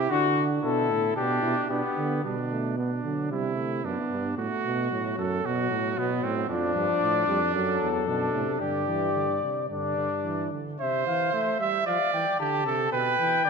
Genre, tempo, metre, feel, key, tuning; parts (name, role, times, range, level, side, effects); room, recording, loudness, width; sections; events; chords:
classical, imitative canzona for brass ensemble; 112 BPM; 4/4; straight; A4 = 441 Hz
warm trumpet; second line; 0.0-13.5 s; B3 to E5; -29 LUFS; right 6 dB
mellow trombone; accompaniment; 0.0-13.5 s; B2 to E4; -32 LUFS; right 3 dB
warm bass trombone; bass; 0.0-10.5 s; E2 to D3; -31 LUFS; right 2 dB
mellow cornet; melody; 0.1-2.2, 6.5-13.5 s; F#4 to A5; -27 LUFS; left 8 dB
wet concert hall reverb, RT60 2.2 s; minimal, uncompressed stereo recording; -24 LUFS; side -5 dB against mid
0.0-2.2 A section; 2.2-10.8 B section; 10.8-13.5 A section
0.1 D; 1.2 G/B; 2.2 G/B (rootless); 3.3 C; 4.4 F#madd11; 5.4 B5; 6.5 Dm/F; 7.5 D; 8.6 Gsus4; 9.7 G5; 10.8 C; 11.9 Dm; 12.9 G/B